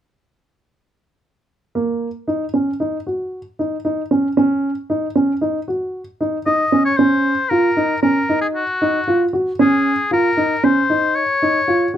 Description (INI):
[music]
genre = contemporary instrumental, chamber music in an uneven meter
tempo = 115 BPM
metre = 5/4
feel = straight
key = unclear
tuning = A4 = 440 Hz
[part]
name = dark baby grand piano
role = arpeggios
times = 1.8-12.0 s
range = Bb3 to Gb4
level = -17 LUFS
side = right 1 dB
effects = none
[part]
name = clear oboe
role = melody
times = 6.5-11.9 s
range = Gb4 to Eb5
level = -18 LUFS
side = left 3 dB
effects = none
[sound]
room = light reverb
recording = close, detailed microphones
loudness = -16 LUFS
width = side -10 dB against mid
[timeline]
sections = 1.8-7.0 A section; 7.0-12.0 B section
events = none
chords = 1.8 Ebm7; 4.4 Dbsus24; 7.0 Db